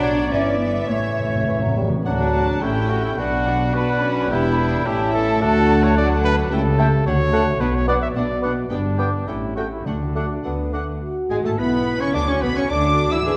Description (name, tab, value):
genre	quick classical-period movement for symphony orchestra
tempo	107 BPM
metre	2/4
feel	straight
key	D major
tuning	A4 = 440 Hz
part	dark studio violin section	melody	0.0-13.3 s	D5 to E6	-35 LUFS	equal	none
part	mellow hollow concert flute	second line	0.0-13.4 s	D5 to E6	-31 LUFS	equal	none
part	rich studio violin section	second line	0.0-13.4 s	G#3 to E5	-34 LUFS	equal	none
part	warm oboe	second line	0.0-13.2 s	G#4 to G5	-32 LUFS	equal	none
part	mellow bassoon	accompaniment	0.0-13.4 s	E3 to E4	-30 LUFS	equal	none
part	warm studio viola section	accompaniment	0.0-13.4 s	D3 to D5	-30 LUFS	equal	none
part	warm French horn section	sustained chords	0.0-13.4 s	A3 to E5	-30 LUFS	equal	none
part	rich studio cello section	bass	0.0-13.4 s	D2 to D4	-29 LUFS	equal	none
part	rich symphonic double bass section	bass	0.0-13.4 s	E1 to D2	-26 LUFS	equal	none
part	timpani	percussion	0.9-2.0, 9.9-10.7 s	A2 to D3	-29 LUFS	equal	none
part	warm trumpet	stabs	2.1-10.7 s	D4 to E5	-27 LUFS	equal	none
room	wet scoring stage reverb, RT60 1.8 s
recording	dark, warm production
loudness	-20 LUFS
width	mono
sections	0.0-2.1 A section; 2.1-11.0 B section; 11.0-13.4 A section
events	timpani fill 0.9-2.1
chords	0.3 Em7/G; 0.9 A; 2.1 D; 2.6 A7; 3.2 Bm; 4.3 Em7; 4.9 A7; 5.4 D; 6.5 A7/C#; 7.1 D; 7.6 Bm; 8.7 G; 9.3 A7; 9.9 D; 11.0 A; 12.1 D